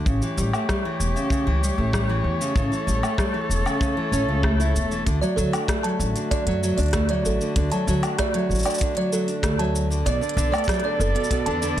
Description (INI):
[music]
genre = folktronica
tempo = 96 BPM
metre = 4/4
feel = straight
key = D major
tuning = A4 = 439 Hz
[part]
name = nylon-string guitar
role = arpeggios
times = 0.0-11.8 s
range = B2 to E4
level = -26 LUFS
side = equal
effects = ping-pong delay
[part]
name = dark string quartet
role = sustained chords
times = 0.1-11.8 s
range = D3 to D5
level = -29 LUFS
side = left 1 dB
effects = none
[part]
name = upright bass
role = bass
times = 0.1-11.8 s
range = E1 to F#2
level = -24 LUFS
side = equal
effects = none
[part]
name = kick drum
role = drums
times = 0.1-11.4 s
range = none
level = -25 LUFS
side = equal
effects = none
[part]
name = organic electronic drum kit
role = drums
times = 0.1-11.8 s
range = cabasa, hi-hat, rim click, woodblock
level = -30 LUFS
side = left 1 dB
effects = none
[part]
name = music box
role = second line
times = 5.2-11.6 s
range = A4 to A5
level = -27 LUFS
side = right 3 dB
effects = ping-pong delay
[sound]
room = light reverb, small room ambience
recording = none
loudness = -20 LUFS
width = side -12 dB against mid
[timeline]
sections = 0.0-11.8 A section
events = none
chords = 0.1 A7; 5.1 D; 10.1 Bm7